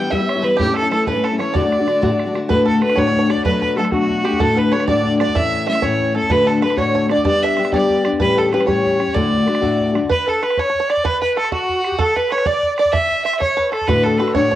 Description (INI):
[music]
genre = celtic folk, Celtic jig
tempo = 126 BPM (dotted quarters)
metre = 6/8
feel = straight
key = D major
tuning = A4 = 440 Hz
[part]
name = clear fiddle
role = melody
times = 0.0-14.6 s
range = F#4 to G5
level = -19 LUFS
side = right 2 dB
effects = none
[part]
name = bluegrass banjo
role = second line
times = 0.0-14.6 s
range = F#4 to E5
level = -25 LUFS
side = right 7 dB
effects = cassette tape
[part]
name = bright baroque flute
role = second line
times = 0.0-14.6 s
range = F#4 to G5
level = -24 LUFS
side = left 3 dB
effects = cassette tape
[part]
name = picked steel-string acoustic guitar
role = accompaniment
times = 0.0-10.1, 13.9-14.6 s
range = D2 to G4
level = -18 LUFS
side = left 3 dB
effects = cassette tape
[part]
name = bodhran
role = percussion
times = 0.1-14.6 s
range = none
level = -26 LUFS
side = right 3 dB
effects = none
[sound]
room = moderate spring reverb, RT60 1.3 s, small room reverb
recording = home recording on cassette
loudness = -15 LUFS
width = side -13 dB against mid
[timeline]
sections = 0.0-2.5 A section; 2.5-10.1 B section; 10.1-14.6 B section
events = none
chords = 0.0 Em; 0.6 A; 1.5 D; 3.5 Bm7; 4.4 D; 5.4 A; 6.3 D; 7.3 G; 8.2 A7; 9.2 D; 10.1 N.C.; 13.9 D